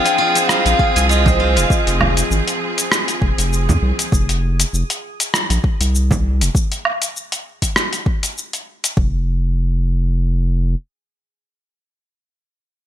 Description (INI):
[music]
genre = organic downtempo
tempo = 99 BPM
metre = 4/4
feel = swing 55% on 16ths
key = F dorian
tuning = A4 = 439 Hz
[part]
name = mellow reedy bansuri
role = melody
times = 0.0-1.7 s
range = Eb5 to G5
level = -21 LUFS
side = left 2 dB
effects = digital delay
[part]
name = bright symphonic string section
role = sustained chords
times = 0.0-4.1 s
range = F3 to Ab4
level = -22 LUFS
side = right 1 dB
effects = sidechain pumping
[part]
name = steel-string zither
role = arpeggios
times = 0.0-3.9 s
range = D4 to D6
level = -21 LUFS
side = right 2 dB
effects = vintage 12-bit sampler grit, ping-pong delay
[part]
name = drifting glass-harmonics texture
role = texture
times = 0.0-4.1 s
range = Ab4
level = -29 LUFS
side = equal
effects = chorus, built-in reverb
[part]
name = dusty soul sampler-style drum kit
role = drums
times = 0.1-9.0 s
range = cabasa, hi-hat, rim click, woodblock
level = -20 LUFS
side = equal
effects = gated reverb
[part]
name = round analog bass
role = bass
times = 0.7-10.8 s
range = F1 to F2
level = -17 LUFS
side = equal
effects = sidechain pumping
[part]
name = electronic kick drum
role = drums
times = 0.8-9.1 s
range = none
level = -18 LUFS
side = equal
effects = overdrive
[part]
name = frame drum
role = percussion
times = 1.3-6.2 s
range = none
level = -22 LUFS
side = right 2 dB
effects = none
[sound]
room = light reverb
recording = bright 1980s-style digital production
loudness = -15 LUFS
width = side -11 dB against mid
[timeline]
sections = 0.0-9.0 A section; 9.0-11.4 B section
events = none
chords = 0.0 Fm; 4.1 F5; 9.0 N.C.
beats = 0.49 1.10 | 1.70 2.31 2.91 3.52 | 4.13 4.73 5.34 5.94 | 6.55 7.16 7.76 8.37 | 8.97 9.58 10.19